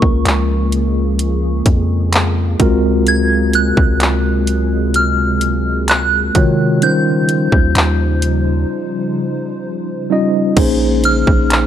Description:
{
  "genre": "contemporary R&B",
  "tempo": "64 BPM",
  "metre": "4/4",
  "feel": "straight",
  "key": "unclear",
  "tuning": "A4 = 437 Hz",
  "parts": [
    { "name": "soft synth bell", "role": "melody", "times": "0.0-11.7 s", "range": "Db6 to Ab6", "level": "-19 LUFS", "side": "right 1 dB", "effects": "chorus, phaser" },
    { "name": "mellow tine electric piano", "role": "accompaniment", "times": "0.0-11.7 s", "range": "C3 to Eb5", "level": "-17 LUFS", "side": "equal", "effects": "medium stereo tremolo" },
    { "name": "hollow soft pad", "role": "sustained chords", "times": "0.0-11.7 s", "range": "C3 to C5", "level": "-24 LUFS", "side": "equal", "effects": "ensemble chorus, tremolo" },
    { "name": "long sustained 808-style bass", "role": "bass", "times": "0.0-11.7 s", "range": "Bb1 to Eb3", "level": "-17 LUFS", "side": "equal", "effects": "none" },
    { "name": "trap drum kit", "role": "drums", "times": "0.0-11.7 s", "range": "crash cymbal, handclaps, hi-hat, kick drum", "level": "-15 LUFS", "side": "equal", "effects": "none" }
  ],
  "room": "digital ambience",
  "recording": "dry, gritty hardware recording",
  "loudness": "-12 LUFS",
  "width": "side -10 dB against mid",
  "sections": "0.0-10.6 A section; 10.6-11.7 B section",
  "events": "break 8.7-10.6",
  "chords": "0.0 Db6; 2.6 Gbmaj9#11/Db; 6.8 Eb13; 10.6 Bbm11",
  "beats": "0.26 1.19 2.13 | 3.07 4.00 4.94 5.88 | 6.82 7.75 8.69 9.63 | 10.57 11.51"
}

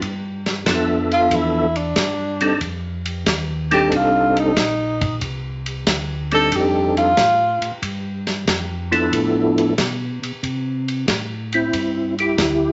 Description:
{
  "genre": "soul jazz organ trio",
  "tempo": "92 BPM",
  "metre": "4/4",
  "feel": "swing 69% on 8ths",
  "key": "unclear",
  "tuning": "A4 = 440 Hz",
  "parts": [
    { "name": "mellow tonewheel organ", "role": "bass", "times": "0.0-12.7 s", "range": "Bb1 to C3", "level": "-29 LUFS", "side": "equal", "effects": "slow rotary speaker" },
    { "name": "warm soul drum kit", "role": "drums", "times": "0.0-12.6 s", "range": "hi-hat, kick drum, ride cymbal, snare drum", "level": "-26 LUFS", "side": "equal", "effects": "none" },
    { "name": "percussive tonewheel organ", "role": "melody", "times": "0.7-12.7 s", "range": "F3 to E5", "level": "-21 LUFS", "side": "equal", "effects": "slow rotary speaker, chorus vibrato" },
    { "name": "breathy tenor saxophone", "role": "melody", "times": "1.1-7.8 s", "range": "D4 to A4", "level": "-20 LUFS", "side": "equal", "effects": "none" }
  ],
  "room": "wet studio reverb, RT60 0.7 s",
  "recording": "nothing above 7.8 kHz",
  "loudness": "-20 LUFS",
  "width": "mono",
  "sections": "0.0-10.4 A section; 10.4-12.7 B section",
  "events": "tenor saxophone solo 0.0-10.4",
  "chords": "0.0 G13; 2.6 F13; 5.2 Csus2; 6.5 F13; 7.8 G13; 10.4 C69",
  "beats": "| 0.01 0.66 1.31 1.96 | 2.62 3.27 3.92 4.57 | 5.22 5.87 6.52 7.17 | 7.82 8.47 9.12 9.78 | 10.43 11.08 11.73 12.38"
}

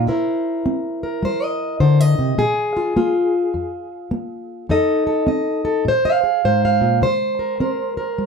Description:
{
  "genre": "acoustic country blues, solo or duo",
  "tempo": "104 BPM",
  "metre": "4/4",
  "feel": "swing 64% on 8ths",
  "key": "unclear",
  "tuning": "A4 = 442 Hz",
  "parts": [
    { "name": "fingerpicked plugged-in steel-string acoustic guitar", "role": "solo", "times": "0.0-8.3 s", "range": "F2 to F5", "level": "-17 LUFS", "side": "equal", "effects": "none" }
  ],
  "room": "moderate small room reverb, RT60 0.6 s",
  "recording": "dark, warm production",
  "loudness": "-16 LUFS",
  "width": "side -5 dB against mid",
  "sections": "0.0-8.3 A section",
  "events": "none",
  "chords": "0.1 C7; 2.4 Bb5; 4.7 F7; 5.9 Bb5; 7.0 C5",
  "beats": "| 0.08 0.66 1.24 1.82 | 2.40 2.98 3.56 4.13 | 4.71 5.29 5.87 6.45 | 7.02 7.60 8.18"
}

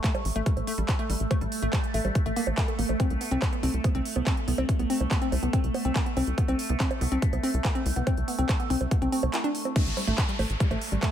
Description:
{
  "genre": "psychedelic trance",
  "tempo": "142 BPM",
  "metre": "4/4",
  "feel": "straight",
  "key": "unclear",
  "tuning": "A4 = 441 Hz",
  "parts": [
    { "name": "overtone-sweeping drone", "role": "sustained chords", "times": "0.0-11.1 s", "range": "A3", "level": "-34 LUFS", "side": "right 3 dB", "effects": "chorus, built-in reverb, phaser, vintage 12-bit sampler grit, sidechain pumping" },
    { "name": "woody wave-folded pluck", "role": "riff", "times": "0.0-11.1 s", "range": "G3 to A4", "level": "-31 LUFS", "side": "left 1 dB", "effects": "chorus, auto-pan, cassette tape, sidechain pumping, tape echo" },
    { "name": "big-room dance drum kit", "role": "drums", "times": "0.0-11.1 s", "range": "bongos, crash cymbal, handclaps, hi-hat", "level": "-33 LUFS", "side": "right 3 dB", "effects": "none" },
    { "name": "electronic kick drum", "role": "drums", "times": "0.0-11.1 s", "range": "none", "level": "-26 LUFS", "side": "equal", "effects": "none" },
    { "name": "tight sequencer bass", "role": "bass", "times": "0.3-11.0 s", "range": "A1 to C2", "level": "-28 LUFS", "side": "equal", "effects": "none" },
    { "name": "downlifter", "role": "sound effects", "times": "9.8-11.1 s", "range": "none", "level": "-34 LUFS", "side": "equal", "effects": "none" }
  ],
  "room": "digital ambience",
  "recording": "none",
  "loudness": "-24 LUFS",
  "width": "side -10 dB against mid",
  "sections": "0.0-9.8 A section; 9.8-11.1 B section",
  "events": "break 9.3-9.8; drop 9.8-11.1",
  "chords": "0.0 N.C.; 3.0 C5; 9.8 N.C.",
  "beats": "0.04 0.46 0.89 | 1.31 1.73 2.15 2.58 | 3.00 3.42 3.84 4.27 | 4.69 5.11 5.53 5.96 | 6.38 6.80 7.22 7.65 | 8.07 8.49 8.91 9.34 | 9.76 10.18 10.60 11.03"
}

